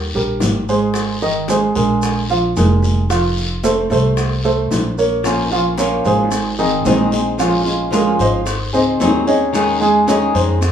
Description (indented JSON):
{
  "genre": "latin, Cuban son and guajira",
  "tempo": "112 BPM",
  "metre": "4/4",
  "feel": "straight",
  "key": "Bb minor",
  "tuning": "A4 = 441 Hz",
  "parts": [
    { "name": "dark baby grand piano", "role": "arpeggios", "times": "0.0-10.7 s", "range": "Eb3 to Ab5", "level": "-17 LUFS", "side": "right 2 dB", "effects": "none" },
    { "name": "upright bass", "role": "bass", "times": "0.0-10.7 s", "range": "F1 to F2", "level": "-21 LUFS", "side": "equal", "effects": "none" },
    { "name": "bongos", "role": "percussion", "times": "0.1-10.7 s", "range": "none", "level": "-25 LUFS", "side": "left 4 dB", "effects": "none" },
    { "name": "congas", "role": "percussion", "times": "0.1-10.7 s", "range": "none", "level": "-27 LUFS", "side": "equal", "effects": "none" },
    { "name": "maracas", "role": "percussion", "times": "0.1-10.7 s", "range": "none", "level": "-31 LUFS", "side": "right 4 dB", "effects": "none" },
    { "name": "guiro", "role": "percussion", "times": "0.4-10.7 s", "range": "none", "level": "-29 LUFS", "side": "left 3 dB", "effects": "none" },
    { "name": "flamenco guitar", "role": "accompaniment", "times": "5.2-10.7 s", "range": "Eb3 to Ab4", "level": "-17 LUFS", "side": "left 2 dB", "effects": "none" }
  ],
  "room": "moderate studio reverb, RT60 0.5 s",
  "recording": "band playing live in one room, small room ambience",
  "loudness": "-14 LUFS",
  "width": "side -8 dB against mid",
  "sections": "0.0-10.7 A section",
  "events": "none",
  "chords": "0.0 Eb (rootless); 1.0 Ab; 2.0 Bb5; 3.1 F; 5.2 Bbm; 6.3 Ab; 7.4 Bbm7; 8.5 Ab7; 9.5 Eb7sus4"
}